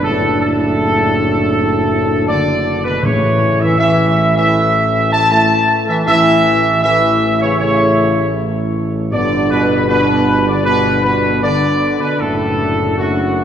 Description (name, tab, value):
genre	classical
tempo	79 BPM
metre	4/4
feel	straight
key	A mixolydian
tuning	A4 = 440 Hz
part	dark trumpet section	melody	0.0-13.4 s	F#4 to A5	-15 LUFS	equal	none
part	dark trombone section	sustained chords	0.0-13.4 s	F#2 to A3	-19 LUFS	equal	none
part	mellow French horn section	sustained chords	0.0-13.4 s	A3 to E4	-20 LUFS	equal	none
part	dark tuba	bass	0.0-13.4 s	F#1 to A1	-19 LUFS	equal	none
part	timpani	percussion	3.0-4.1 s	A2	-22 LUFS	left 2 dB	none
room	wet church reverb, RT60 3.7 s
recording	recorded in a church or concert hall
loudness	-12 LUFS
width	side -9 dB against mid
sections	0.0-13.4 A section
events	none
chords	0.0 D/F#; 3.0 A; 9.1 G; 12.2 D/F#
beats	| 0.03 0.77 1.52 2.28 | 3.03 3.79 4.55 5.31 | 6.07 6.84 7.60 8.36 | 9.13 9.89 10.66 11.43 | 12.20 12.98